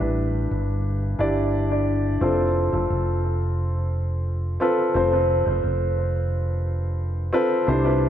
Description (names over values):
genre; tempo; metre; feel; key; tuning
piano-driven pop; 88 BPM; 4/4; straight; unclear; A4 = 440 Hz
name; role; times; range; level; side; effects
warm upright piano; accompaniment; 0.0-8.1 s; G2 to D5; -23 LUFS; equal; analog delay
mellow fretless electric bass; bass; 0.0-8.1 s; F1 to C2; -24 LUFS; equal; none
room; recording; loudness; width
light reverb; echo-heavy mix; -20 LUFS; side -10 dB against mid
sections
0.0-2.2 A section; 2.2-8.1 B section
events
none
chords
0.0 G6; 2.2 F